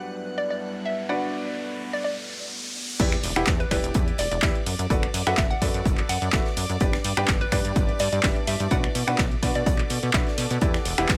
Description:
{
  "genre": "piano house",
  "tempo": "126 BPM",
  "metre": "4/4",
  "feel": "swing 53% on 16ths",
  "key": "E minor",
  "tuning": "A4 = 440 Hz",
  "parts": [
    { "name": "clear studio violin section", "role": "sustained chords", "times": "0.0-11.2 s", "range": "D5 to F#6", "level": "-41 LUFS", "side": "equal", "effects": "sidechain pumping" },
    { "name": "clear grand piano", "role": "riff", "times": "0.0-11.1 s", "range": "D4 to G5", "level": "-32 LUFS", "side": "equal", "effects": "sidechain pumping, tape echo" },
    { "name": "riser and impact", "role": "sound effects", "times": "0.3-4.9 s", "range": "none", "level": "-38 LUFS", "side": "equal", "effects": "none" },
    { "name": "deep dark ambient pad", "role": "texture", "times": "0.0-2.0, 7.9-11.2 s", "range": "G3 to A5", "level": "-40 LUFS", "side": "equal", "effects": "chorus, built-in reverb, sidechain pumping" },
    { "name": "hollow square pluck", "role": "melody", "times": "0.4-9.7 s", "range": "B4 to F#5", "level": "-33 LUFS", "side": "equal", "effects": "chorus, tape echo" },
    { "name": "plucky analog bass", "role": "bass", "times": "3.0-11.2 s", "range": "E1 to B2", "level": "-30 LUFS", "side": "equal", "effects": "sidechain pumping" },
    { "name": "electronic kick drum", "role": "drums", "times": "3.0-11.2 s", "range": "none", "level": "-27 LUFS", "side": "equal", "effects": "none" },
    { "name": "modern studio drum kit", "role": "drums", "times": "3.0-11.2 s", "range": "hi-hat, snare drum", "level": "-42 LUFS", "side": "equal", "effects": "none" },
    { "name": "punchy analog drum machine", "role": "drums", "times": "3.0-11.2 s", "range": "crash cymbal, finger snaps, handclaps, hi-hat, ride cymbal", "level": "-31 LUFS", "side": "equal", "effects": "low-pass filter on hats, low-pass filter on cymbals, low-pass filter on snare, low-pass filter on room" }
  ],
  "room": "little or no reverb",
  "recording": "none",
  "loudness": "-24 LUFS",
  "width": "mono",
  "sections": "0.0-3.0 A section; 3.0-11.2 B section",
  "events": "filter sweep on violin section 0.0-3.0; riser 0.3-3.0; drop 3.0-11.2; impact 3.0-4.9",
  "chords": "0.0 G; 1.1 Bm; 3.0 Em7; 4.7 D6/F#; 6.8 G; 8.7 Bm; 10.6 Em7",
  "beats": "0.14 0.62 | 1.09 1.57 2.04 2.52 | 3.00 3.47 3.95 4.43 | 4.90 5.38 5.85 6.33 | 6.81 7.28 7.76 8.23 | 8.71 9.19 9.66 10.14 | 10.62 11.09"
}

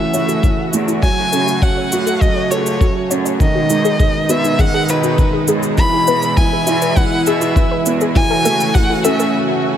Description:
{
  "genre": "piano and strings electronica",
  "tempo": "101 BPM",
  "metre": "4/4",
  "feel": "straight",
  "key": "F# dorian",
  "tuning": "A4 = 440 Hz",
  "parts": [
    { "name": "warm violin", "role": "melody", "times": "0.0-9.3 s", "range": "B4 to B5", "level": "-19 LUFS", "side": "equal", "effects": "ping-pong delay" },
    { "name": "lush unison pad", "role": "sustained chords", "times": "0.0-9.8 s", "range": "B2 to F#4", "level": "-22 LUFS", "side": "right 1 dB", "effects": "chorus, sidechain pumping" },
    { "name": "warbly dusty pluck", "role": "arpeggios", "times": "0.0-9.3 s", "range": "D#4 to C#5", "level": "-23 LUFS", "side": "left 3 dB", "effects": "chorus, vintage 12-bit sampler grit, sidechain pumping, ping-pong delay" },
    { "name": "felt-muted upright piano", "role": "riff", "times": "0.0-9.8 s", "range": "D#3 to A4", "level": "-19 LUFS", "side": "right 2 dB", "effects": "none" },
    { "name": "rich symphonic cello section", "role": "bass", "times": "0.1-9.3 s", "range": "C#2 to B2", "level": "-28 LUFS", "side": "left 1 dB", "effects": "sidechain pumping, high-pass filter" },
    { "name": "shaker", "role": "drums", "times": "0.1-9.3 s", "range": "none", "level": "-24 LUFS", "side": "right 1 dB", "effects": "overdrive" },
    { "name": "electronic kick drum", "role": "drums", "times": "0.4-8.9 s", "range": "none", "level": "-15 LUFS", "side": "equal", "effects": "none" }
  ],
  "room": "light reverb, studio ambience",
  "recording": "none",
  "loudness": "-13 LUFS",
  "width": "side -10 dB against mid",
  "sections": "0.0-9.8 A section",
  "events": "build-up 0.0-9.8; filter sweep on synth arpeggio sound 0.0-9.8; break 9.3-9.8",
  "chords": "0.0 A6; 1.0 F#m; 3.4 B6/F#; 5.8 E; 8.2 A6",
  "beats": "0.44 | 1.03 1.62 2.22 2.81 | 3.41 4.00 4.59 5.19 | 5.78 6.38 6.97 7.56 | 8.16 8.75 9.35"
}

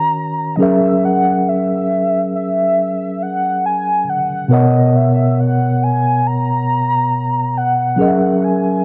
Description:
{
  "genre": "R&B",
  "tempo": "69 BPM",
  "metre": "4/4",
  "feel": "swing 58% on 16ths",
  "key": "unclear",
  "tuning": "A4 = 443 Hz",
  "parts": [
    { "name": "warm velvety synth lead", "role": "melody", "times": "0.0-8.8 s", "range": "D#5 to A#5", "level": "-20 LUFS", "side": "equal", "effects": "chorus, cassette tape" },
    { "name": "mellow tine electric piano", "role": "accompaniment", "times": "0.0-8.8 s", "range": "B2 to F#5", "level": "-18 LUFS", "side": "equal", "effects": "cassette tape" }
  ],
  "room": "light reverb",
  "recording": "home recording on cassette",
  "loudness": "-16 LUFS",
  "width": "mono",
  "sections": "0.0-8.8 A section",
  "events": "none",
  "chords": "0.0 D#m7; 0.6 F#7; 4.5 B5; 8.0 F#7",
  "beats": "0.16 | 1.03 1.90 2.77 3.64 | 4.51 5.38 6.25 7.12 | 7.99"
}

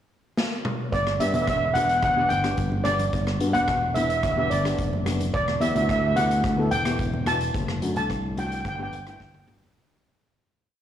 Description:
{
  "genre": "calypso",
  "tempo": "109 BPM",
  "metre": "4/4",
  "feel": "straight",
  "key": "G major",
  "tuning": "A4 = 436 Hz",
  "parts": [
    { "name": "street-band drum kit", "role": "drums", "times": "0.4-9.7 s", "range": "hi-hat, kick drum, rim click, snare drum, toms", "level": "-30 LUFS", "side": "left 1 dB", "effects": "soft clipping on snare" },
    { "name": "steel pan", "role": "melody", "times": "0.9-9.5 s", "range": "D5 to A5", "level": "-25 LUFS", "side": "right 1 dB", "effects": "none" },
    { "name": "modern bright fingered electric bass", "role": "bass", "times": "0.9-9.7 s", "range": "E1 to G2", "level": "-27 LUFS", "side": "equal", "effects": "tube saturation" },
    { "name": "steel pan", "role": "accompaniment", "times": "1.2-9.8 s", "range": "A3 to A4", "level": "-30 LUFS", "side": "left 4 dB", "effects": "none" },
    { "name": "congas", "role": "percussion", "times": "1.3-9.7 s", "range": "none", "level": "-35 LUFS", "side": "right 1 dB", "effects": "none" }
  ],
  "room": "moderate concert hall reverb, RT60 2.2 s",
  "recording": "blown-out, overdriven recording, overdrive, studio ambience",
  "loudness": "-22 LUFS",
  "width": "side -10 dB against mid",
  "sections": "0.0-0.9 pickup bar; 0.9-9.8 chorus",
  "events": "drum fill 0.4-0.9, 9.2-9.8; fade-out 7.5-9.8",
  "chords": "0.0 N.C.; 0.9 G; 5.3 Emadd9; 7.5 D/F#; 8.7 G",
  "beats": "0.37 | 0.92 1.48 2.03 2.58 | 3.14 3.69 4.24 4.79 | 5.34 5.89 6.45 7.00 | 7.55 8.10 8.65 9.21"
}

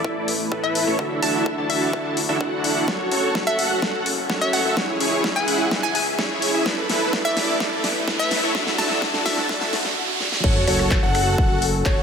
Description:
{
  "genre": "EDM, festival progressive house",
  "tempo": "127 BPM",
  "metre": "4/4",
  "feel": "straight",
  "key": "F# minor",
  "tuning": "A4 = 440 Hz",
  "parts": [
    { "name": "lush unison pad", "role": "sustained chords", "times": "0.0-12.0 s", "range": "A3 to E5", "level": "-30 LUFS", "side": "left 1 dB", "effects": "chorus, phaser, sidechain pumping" },
    { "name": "dense compressed supersaw", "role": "riff", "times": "0.0-12.0 s", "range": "D4 to A5", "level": "-23 LUFS", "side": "right 1 dB", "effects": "sidechain pumping, low-pass filter, tape echo" },
    { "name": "fat analog bass", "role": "bass", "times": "0.0-12.0 s", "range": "F#1 to A2", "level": "-31 LUFS", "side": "equal", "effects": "none" },
    { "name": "electronic kick drum", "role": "drums", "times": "0.0-11.9 s", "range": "none", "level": "-23 LUFS", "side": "equal", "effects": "high-pass filter on kick, small room ambience" },
    { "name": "riser, swell and sub drop", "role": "sound effects", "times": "0.2-12.0 s", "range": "none", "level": "-29 LUFS", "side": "equal", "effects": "none" },
    { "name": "big-room dance drum kit", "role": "drums", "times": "0.3-11.9 s", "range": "crash cymbal, finger snaps, handclaps, hi-hat, snare drum", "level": "-26 LUFS", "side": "left 1 dB", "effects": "small room ambience" },
    { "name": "hollow square pluck", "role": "melody", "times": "0.6-9.7 s", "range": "E5 to A5", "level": "-27 LUFS", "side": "left 1 dB", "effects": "chorus, tape echo" },
    { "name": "warm concert grand piano", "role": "arpeggios", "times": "10.4-12.0 s", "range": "C#5 to F#5", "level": "-26 LUFS", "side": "left 1 dB", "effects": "sidechain pumping, tape echo" }
  ],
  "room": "moderate lush hall reverb, RT60 1.8 s",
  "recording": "high-pass filter",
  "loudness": "-19 LUFS",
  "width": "side -6 dB against mid",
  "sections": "0.0-10.4 A section; 10.4-12.0 B section",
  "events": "build-up 0.0-10.4; filter sweep on supersaw synth 0.0-10.4; filter sweep 0.0-10.4; riser 0.2-10.4; drum fill 2.9-10.0, 10.2; swell 9.5-10.4; drop 10.4-12.0; impact 10.4-12.0",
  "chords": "0.0 Asus2; 1.0 Dadd9; 2.9 F#m; 4.8 C#m; 6.7 Asus2; 8.5 Dadd9; 10.4 F#m",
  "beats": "0.04 0.52 | 0.99 1.46 1.93 2.41 | 2.88 3.35 3.82 4.30 | 4.77 5.24 5.71 6.19 | 6.66 7.13 7.60 8.08 | 8.55 9.02 9.49 9.97 | 10.44 10.91 11.38 11.86"
}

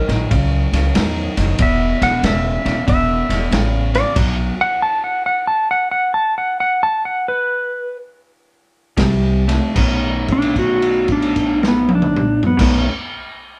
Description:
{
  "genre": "electric blues shuffle",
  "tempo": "75-94 BPM",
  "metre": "4/4",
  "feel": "swing 66% on 8ths",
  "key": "B mixolydian",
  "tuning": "A4 = 438 Hz",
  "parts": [
    { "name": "clean lap steel guitar", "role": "melody", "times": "0.0-12.9 s", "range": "B3 to A5", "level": "-19 LUFS", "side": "equal", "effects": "none" },
    { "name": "electric guitar through a small old amp", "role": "riff", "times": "0.0-4.5, 9.0-12.9 s", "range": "E2 to C#4", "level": "-24 LUFS", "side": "equal", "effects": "none" },
    { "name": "upright bass", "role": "bass", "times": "0.1-4.5, 9.0-12.9 s", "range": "E1 to E2", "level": "-22 LUFS", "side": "equal", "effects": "none" },
    { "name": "vintage drum kit", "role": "drums", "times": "0.1-4.4, 9.0-12.8 s", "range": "crash cymbal, kick drum, ride cymbal, snare drum, toms", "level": "-23 LUFS", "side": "equal", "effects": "none" }
  ],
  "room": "light reverb",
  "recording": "band playing live in one room",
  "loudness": "-17 LUFS",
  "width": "mono",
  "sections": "0.0-9.7 A section; 9.7-13.0 B section",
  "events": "slowing down 4.2-9.7; stop 4.2-9.0; held note 9.7-12.5",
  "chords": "0.0 F#7(no3); 1.6 E5; 4.2 B5; 9.0 C5; 9.7 B9",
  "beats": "0.31 0.95 | 1.59 2.23 2.88 3.52 | 4.16 4.80 5.45 6.12 | 6.80 7.49 8.21 8.96 | 9.75 10.55 11.36 12.16"
}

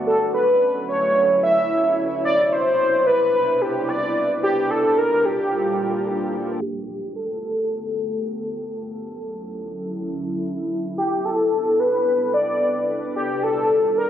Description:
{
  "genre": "IDM",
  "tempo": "110 BPM",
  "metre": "4/4",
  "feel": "straight",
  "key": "G major",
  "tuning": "A4 = 441 Hz",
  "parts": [
    { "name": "warbly tape-like pad", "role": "sustained chords", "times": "0.0-14.1 s", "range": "C2 to F#5", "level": "-28 LUFS", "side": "equal", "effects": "chorus, built-in reverb" },
    { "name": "warm velvety synth lead", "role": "melody", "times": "0.1-14.1 s", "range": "G4 to E5", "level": "-19 LUFS", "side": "equal", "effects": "chorus, ping-pong delay" }
  ],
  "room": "wet huge ambient reverb, RT60 8.2 s",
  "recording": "recorded on a phone in the room, club reverb, low-pass filter",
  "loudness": "-18 LUFS",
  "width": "side -10 dB against mid",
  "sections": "0.0-6.6 A section; 6.6-14.1 B section",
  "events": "filter sweep on ambient pad 6.6-14.1; filter sweep 6.6-14.1",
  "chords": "0.1 Dmaj9; 2.0 Cmaj9; 4.4 Ebmaj9; 6.6 Gmaj9; 8.8 Dmaj9; 10.7 Cmaj9; 13.2 Ebmaj9",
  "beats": "| 0.07 0.61 1.16 1.70 | 2.25 2.79 3.34 3.89 | 4.43 4.98 5.52 6.07 | 6.61 7.16 7.70 8.25 | 8.79 9.34 9.89 10.43 | 10.98 11.52 12.07 12.61 | 13.16 13.70"
}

